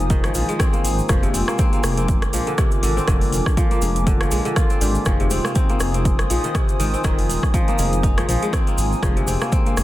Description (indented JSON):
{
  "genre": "afro house",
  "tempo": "121 BPM",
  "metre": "4/4",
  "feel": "swing 56% on 16ths",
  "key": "F dorian",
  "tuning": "A4 = 440 Hz",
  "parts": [
    { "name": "dark analog pad", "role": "sustained chords", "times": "0.0-9.8 s", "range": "F4 to Eb6", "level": "-28 LUFS", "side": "right 1 dB", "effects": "chorus, sidechain pumping" },
    { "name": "kora", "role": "arpeggios", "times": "0.0-9.8 s", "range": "C3 to F4", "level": "-25 LUFS", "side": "left 1 dB", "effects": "sidechain pumping, tape echo" },
    { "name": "warm analog keys", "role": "stabs", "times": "0.0-9.8 s", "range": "Ab3 to Bb4", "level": "-29 LUFS", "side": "left 4 dB", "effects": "chorus, sidechain pumping, tape echo" },
    { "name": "dark detuned saw bass", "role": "bass", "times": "0.0-9.8 s", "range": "Eb1 to Bb1", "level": "-23 LUFS", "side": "equal", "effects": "sidechain pumping" },
    { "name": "afro-pop drum kit", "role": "drums", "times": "0.1-9.8 s", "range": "hi-hat, rim click", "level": "-28 LUFS", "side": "equal", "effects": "soft clipping on snare" },
    { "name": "electronic kick drum", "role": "drums", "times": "0.1-9.6 s", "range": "none", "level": "-20 LUFS", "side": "equal", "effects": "overdrive" },
    { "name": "egg shaker", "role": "percussion", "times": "0.1-9.8 s", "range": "none", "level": "-33 LUFS", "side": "right 3 dB", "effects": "none" }
  ],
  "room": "little or no reverb",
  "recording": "dense, heavily limited modern master",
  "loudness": "-17 LUFS",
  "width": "side -15 dB against mid",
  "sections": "0.0-9.8 A section",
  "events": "none",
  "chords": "0.0 Fm7; 1.1 Bb7/F; 5.1 Fm7; 9.0 Bb7/F",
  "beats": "0.10 0.60 | 1.09 1.59 2.09 2.58 | 3.08 3.57 4.07 4.57 | 5.06 5.56 6.05 6.55 | 7.04 7.54 8.04 8.53 | 9.03 9.52"
}